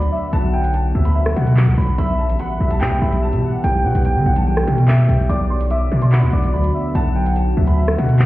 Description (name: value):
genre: hip hop, drill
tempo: 145 BPM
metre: 4/4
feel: half-time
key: B minor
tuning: A4 = 441 Hz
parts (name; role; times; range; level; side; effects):
- clear grand piano; melody; 0.0-8.3 s; E5 to D6; -25 LUFS; right 1 dB; digital delay
- warm velvety synth lead; second line; 0.0-7.8 s; D5 to G5; -28 LUFS; left 1 dB; chorus, digital delay
- dark analog pad; sustained chords; 0.0-8.3 s; D3 to G4; -23 LUFS; equal; chorus
- distorted 808-style bass; bass; 0.0-8.3 s; A1 to D3; -16 LUFS; equal; distortion
- drill drum kit; drums; 0.0-8.3 s; handclaps, hi-hat, rim click; -25 LUFS; equal; none
room: little or no reverb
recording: heard muffled through a wall, stone room reverb, EQ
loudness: -15 LUFS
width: side -16 dB against mid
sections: 0.0-8.3 A section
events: none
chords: 0.0 Bm; 2.0 Em; 5.3 Bm